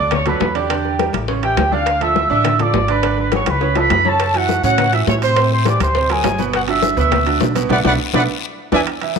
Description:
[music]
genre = latin, salsa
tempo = 206 BPM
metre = 4/4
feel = straight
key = A major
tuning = A4 = 440 Hz
[part]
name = mellow trumpet section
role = melody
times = 0.0-8.8 s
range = F#4 to E6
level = -18 LUFS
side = right 1 dB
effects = none
[part]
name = bright upright piano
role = accompaniment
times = 0.0-9.2 s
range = B2 to E5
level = -21 LUFS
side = right 11 dB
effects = none
[part]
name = upright bass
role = bass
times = 0.0-8.8 s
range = G1 to A2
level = -21 LUFS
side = left 1 dB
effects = none
[part]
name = bongos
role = percussion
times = 0.1-8.8 s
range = none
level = -25 LUFS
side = left 12 dB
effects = none
[part]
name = congas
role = percussion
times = 0.1-9.2 s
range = none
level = -25 LUFS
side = left 13 dB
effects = none
[part]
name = timbales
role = percussion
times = 0.1-9.2 s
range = none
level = -26 LUFS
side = right 12 dB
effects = none
[part]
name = guiro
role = percussion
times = 4.2-9.2 s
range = none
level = -30 LUFS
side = left 14 dB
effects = none
[sound]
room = moderate echo chamber reverb, RT60 1.7 s, studio ambience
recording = 1960s-style stereo with parts hard left and right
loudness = -14 LUFS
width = side -6 dB against mid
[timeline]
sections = 0.0-8.9 A section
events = drum fill 3.3-4.2, 7.7-8.9; band accent 7.7-8.9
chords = 0.0 Bm9; 0.7 Em7b5; 1.3 A7b13; 1.9 Dmadd9; 3.0 G#m7b5; 3.6 C#aug7; 4.2 F#m7; 5.4 Am7; 6.0 Daug7; 6.5 Gmaj7; 7.7 Bm7; 8.3 E7(no3)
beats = 0.12 0.41 | 0.70 0.99 1.28 1.57 | 1.87 2.16 2.45 2.74 | 3.03 3.33 3.62 3.91 | 4.20 4.49 4.78 5.08 | 5.37 5.66 5.95 6.24 | 6.53 6.83 7.12 7.41 | 7.70 7.99 8.28 8.58 | 8.87 9.16

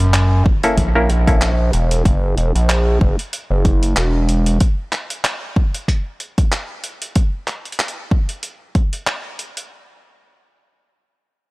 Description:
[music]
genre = glitch hop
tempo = 94 BPM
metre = 4/4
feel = swing 56% on 16ths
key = unclear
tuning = A4 = 440 Hz
[part]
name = gritty driven synth bass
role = bass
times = 0.0-4.6 s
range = E1 to F#2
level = -15 LUFS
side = equal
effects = none
[part]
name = boom bap sampler-style drum kit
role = drums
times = 0.0-9.7 s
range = handclaps, hi-hat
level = -23 LUFS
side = equal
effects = none
[part]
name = impact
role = sound effects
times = 0.0-2.1 s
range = none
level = -28 LUFS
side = equal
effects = none
[part]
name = electronic kick drum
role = drums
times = 0.5-8.9 s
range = none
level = -15 LUFS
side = equal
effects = overdrive
[part]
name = muted clav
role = stabs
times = 0.6-1.5 s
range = A#3 to A#4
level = -19 LUFS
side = equal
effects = sidechain pumping, low-pass filter, tape echo
[sound]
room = little or no reverb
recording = dry, gritty hardware recording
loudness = -15 LUFS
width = side -23 dB against mid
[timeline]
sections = 0.0-9.7 A section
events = impact 0.0-2.1; filter sweep on analog synth bass 0.0-4.6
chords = 0.0 F#7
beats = 0.14 0.77 1.41 | 2.05 2.69 3.33 3.97 | 4.60 5.24 5.88 6.52 | 7.16 7.79 8.43 9.07

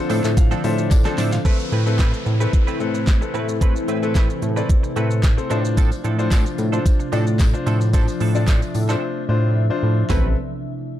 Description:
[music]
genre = dance-pop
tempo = 111 BPM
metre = 4/4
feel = straight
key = A minor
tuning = A4 = 439 Hz
[part]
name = clear baby grand piano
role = accompaniment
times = 0.0-10.4 s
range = C4 to A5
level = -26 LUFS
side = left 5 dB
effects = sidechain pumping
[part]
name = glassy FM pad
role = sustained chords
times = 0.0-10.4 s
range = C3 to E5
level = -28 LUFS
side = equal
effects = ensemble chorus, built-in reverb, sidechain pumping
[part]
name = mallet-like synth pluck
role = arpeggios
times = 0.0-1.4 s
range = F3 to F5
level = -32 LUFS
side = left 5 dB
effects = none
[part]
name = direct-recorded clean electric guitar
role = riff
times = 0.1-10.3 s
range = F3 to B4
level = -30 LUFS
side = right 8 dB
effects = analog chorus
[part]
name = chorused synth bass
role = bass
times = 0.1-10.3 s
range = A1 to A2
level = -20 LUFS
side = equal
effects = sidechain pumping
[part]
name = pop drum kit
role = drums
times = 0.1-10.2 s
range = handclaps, hi-hat, kick drum, shaker, snare drum, toms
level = -18 LUFS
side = equal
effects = none
[part]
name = tambourine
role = percussion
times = 0.1-1.4, 5.8-10.3 s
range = none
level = -41 LUFS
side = left 10 dB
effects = none
[part]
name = downlifter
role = sound effects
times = 1.5-5.8 s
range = none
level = -36 LUFS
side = equal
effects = none
[sound]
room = digital ambience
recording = dark, warm production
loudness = -17 LUFS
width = side -12 dB against mid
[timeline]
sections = 0.0-1.5 A section; 1.5-10.1 B section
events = grand piano fill 0.0-1.5; drum fill 0.9-1.5; silent gap 9.0-10.1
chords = 0.0 Dm7/A; 1.5 Amadd9; 5.5 Dm7/A; 10.1 Amadd9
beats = 0.37 0.91 | 1.45 1.99 2.53 3.07 | 3.61 4.15 4.69 5.24 | 5.78 6.32 6.86 7.40 | 7.94 8.48 9.02 9.56 | 10.10

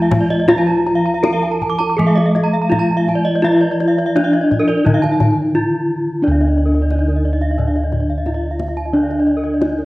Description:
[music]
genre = Balinese gamelan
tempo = 79-88 BPM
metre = 4/4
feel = straight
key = D pelog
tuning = A4 = 440 Hz
[part]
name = gamelan-type bronze metallophone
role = melody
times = 0.0-9.8 s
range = D4 to Bb4-40c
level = -18 LUFS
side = left 1 dB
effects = none
[part]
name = gamelan-type bronze metallophone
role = accompaniment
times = 0.0-9.8 s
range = D3 to A3-45c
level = -25 LUFS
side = right 1 dB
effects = none
[part]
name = gamelan-type bronze metallophone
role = arpeggios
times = 0.0-9.8 s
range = Bb4-40c to D6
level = -23 LUFS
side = right 2 dB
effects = none
[part]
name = gamelan-type bossed gongs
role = bass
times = 0.0-9.8 s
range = D2 to E4+50c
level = -18 LUFS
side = equal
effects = none
[part]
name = gamelan-type bronze metallophone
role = arpeggios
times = 0.1-9.8 s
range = Bb4-40c to D6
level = -25 LUFS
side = left 2 dB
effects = none
[part]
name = kendang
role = percussion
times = 0.1-9.8 s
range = none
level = -20 LUFS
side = left 1 dB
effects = none
[sound]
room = moderate recital hall reverb, RT60 1.6 s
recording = worn, warbling old tape, cassette tape, warbly pitch drift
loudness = -13 LUFS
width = side -19 dB against mid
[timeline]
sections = 0.0-6.2 A section; 6.2-9.8 B section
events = break 5.2-6.2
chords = none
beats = | 0.49 1.25 1.99 2.72 | 3.44 4.15 4.85 5.55 | 6.23 6.91 7.58 8.26 | 8.94 9.62

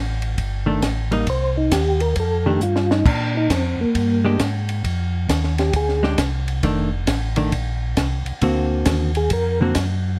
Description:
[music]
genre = soul jazz organ trio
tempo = 134 BPM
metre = 4/4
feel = swing 65% on 8ths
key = F mixolydian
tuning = A4 = 440 Hz
[part]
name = mellow tonewheel organ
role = bass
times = 0.0-10.2 s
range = F1 to Bb2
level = -24 LUFS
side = equal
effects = slow rotary speaker
[part]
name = compact cocktail drum kit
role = drums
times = 0.2-9.9 s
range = crash cymbal, hi-hat, kick drum, ride cymbal, snare drum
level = -27 LUFS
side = equal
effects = none
[part]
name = hollow-body jazz guitar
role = accompaniment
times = 0.7-9.7 s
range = D3 to G4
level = -24 LUFS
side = equal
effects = none
[part]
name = percussive tonewheel organ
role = melody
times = 1.3-6.0, 9.2-9.6 s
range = Bb3 to C5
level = -24 LUFS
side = equal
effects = slow rotary speaker, chorus vibrato
[sound]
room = little or no reverb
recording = none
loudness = -20 LUFS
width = mono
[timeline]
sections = 0.0-10.2 A section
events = tonewheel organ solo 0.0-10.2; drum fill 2.6-3.1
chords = 0.0 F9 (rootless); 1.3 Cm; 2.2 F13; 3.1 Bb13; 6.6 F6; 8.4 D7alt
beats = 0.38 0.82 | 1.27 1.72 2.16 2.61 | 3.06 3.50 3.95 4.40 | 4.84 5.29 5.74 6.18 | 6.63 7.07 7.52 7.97 | 8.41 8.86 9.30 9.75

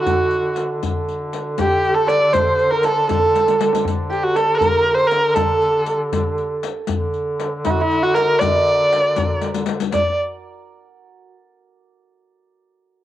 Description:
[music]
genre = Persian modal ensemble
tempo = 79 BPM (dotted quarters)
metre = 6/8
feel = straight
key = D dastgah homayun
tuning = A4 = 440 Hz
[part]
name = rich kamancheh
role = melody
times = 0.0-10.2 s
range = Eb4+42c to D5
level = -17 LUFS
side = equal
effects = none
[part]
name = santur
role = second line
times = 0.0-11.3 s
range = Eb4+45c to Eb5+45c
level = -24 LUFS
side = right 7 dB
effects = cassette tape
[part]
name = warm duduk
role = drone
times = 0.0-10.0 s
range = D3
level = -25 LUFS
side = right 1 dB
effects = cassette tape
[part]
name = riq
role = percussion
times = 0.1-10.2 s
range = none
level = -27 LUFS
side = left 8 dB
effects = none
[part]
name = tombak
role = percussion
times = 0.1-10.2 s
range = none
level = -26 LUFS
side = left 3 dB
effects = none
[sound]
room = moderate spring reverb, RT60 1.3 s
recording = home recording on cassette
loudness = -16 LUFS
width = side -13 dB against mid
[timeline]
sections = 0.0-9.9 A section; 9.9-11.4 B section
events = drum fill 3.4-3.9, 9.4-9.9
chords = none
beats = 0.06 | 0.82 1.58 | 2.34 3.10 | 3.86 4.62 | 5.38 6.13 | 6.89 7.65 | 8.41 9.17 | 9.93 10.68

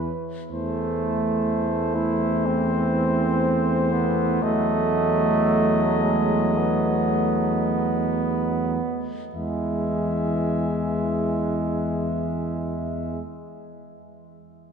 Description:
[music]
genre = classical, hymn-like piece for brass band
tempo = free time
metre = none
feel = none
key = E major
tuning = A4 = 440 Hz
[part]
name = mellow cornet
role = melody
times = 0.0-13.2 s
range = B4 to E5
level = -29 LUFS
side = left 8 dB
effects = none
[part]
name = mellow flugelhorn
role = second line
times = 0.0-13.2 s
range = G#3 to B4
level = -26 LUFS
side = right 6 dB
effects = none
[part]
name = bright trombone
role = accompaniment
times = 0.0-13.2 s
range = E3 to F#3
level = -31 LUFS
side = right 3 dB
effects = none
[part]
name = mellow tuba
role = bass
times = 0.0-13.2 s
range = E2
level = -27 LUFS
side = equal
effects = none
[part]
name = dark euphonium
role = accompaniment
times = 0.5-13.2 s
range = G#3 to A3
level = -28 LUFS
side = left 1 dB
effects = none
[sound]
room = wet cathedral reverb, RT60 5.2 s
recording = dark, warm production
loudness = -21 LUFS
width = side -6 dB against mid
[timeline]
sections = 0.5-9.3 A section; 9.3-14.7 B section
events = slowing down 0.0-9.3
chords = 0.0 E5; 0.5 Am/E; 4.4 B7/E; 9.3 E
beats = free time

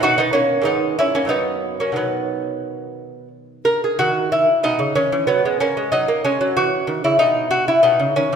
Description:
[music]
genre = classical, baroque-style dance for lute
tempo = 92 BPM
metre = 3/4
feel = uneven beats, rubato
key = B major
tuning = A4 = 442 Hz
[part]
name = lute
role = solo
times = 0.0-8.4 s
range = F#2 to A#4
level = -16 LUFS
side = equal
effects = none
[sound]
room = moderate concert hall reverb, RT60 2.1 s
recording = recorded in a church or concert hall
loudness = -16 LUFS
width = side -7 dB against mid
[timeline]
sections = 0.0-4.0 A section; 4.0-8.4 B section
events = none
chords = 0.0 B; 0.7 G#m; 1.3 F#; 2.0 B; 5.9 F#7; 7.2 N.C.; 7.8 G#m/B (rootless)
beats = | 0.03 0.66 1.31 | 1.98 2.64 3.32 | 4.00 4.65 5.29 | 5.93 6.58 7.21 | 7.85

